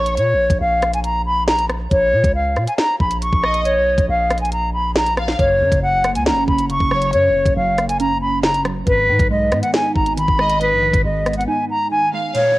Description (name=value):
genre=hip hop, drill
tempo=138 BPM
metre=4/4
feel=half-time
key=unclear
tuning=A4 = 440 Hz
part: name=silver concert flute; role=melody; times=0.0-12.6 s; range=Cb5 to Db6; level=-17 LUFS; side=equal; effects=none
part: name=warm symphonic violin section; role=second line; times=0.0-0.2, 3.4-7.1, 10.4-12.3 s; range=Db5 to F5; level=-26 LUFS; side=equal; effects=cassette tape, tape echo
part: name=long sustained 808-style bass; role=bass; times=0.0-11.5 s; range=Gb1 to Bb2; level=-23 LUFS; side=equal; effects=none
part: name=drill drum kit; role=drums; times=0.1-12.4 s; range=hi-hat, kick drum, rim click, snare drum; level=-20 LUFS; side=equal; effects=none
part: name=glassy wavetable pluck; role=accompaniment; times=5.4-12.6 s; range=Gb2 to Eb4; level=-23 LUFS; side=right 2 dB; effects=chorus, cassette tape
part: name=downlifter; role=sound effects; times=12.3-12.6 s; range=none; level=-29 LUFS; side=equal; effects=none
room=light reverb, digital ambience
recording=home recording on cassette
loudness=-15 LUFS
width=side -18 dB against mid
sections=0.0-12.3 A section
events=break 11.5-12.3; kick muted 12.3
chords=0.0 Bbm; 5.4 Gb; 8.9 Abm